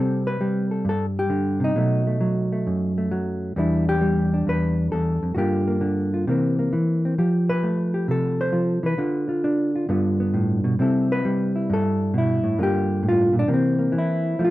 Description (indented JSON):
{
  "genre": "solo jazz",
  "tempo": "133 BPM",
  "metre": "4/4",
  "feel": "swing 68% on 8ths",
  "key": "C major",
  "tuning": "A4 = 439 Hz",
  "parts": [
    { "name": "hollow-body jazz guitar", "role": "solo", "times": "0.0-14.5 s", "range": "E2 to C5", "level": "-20 LUFS", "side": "equal", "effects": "none" }
  ],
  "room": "moderate club ambience, RT60 0.5 s",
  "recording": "minimal, uncompressed stereo recording",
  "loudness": "-20 LUFS",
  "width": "side -16 dB against mid",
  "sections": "0.0-14.4 A section",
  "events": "none",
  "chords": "0.0 C5; 1.8 B7; 3.6 Em7; 5.4 Gm7; 6.3 C7; 7.2 Fadd9; 9.0 Dm; 9.9 G7; 10.8 C6; 12.6 Gm7; 13.5 C7"
}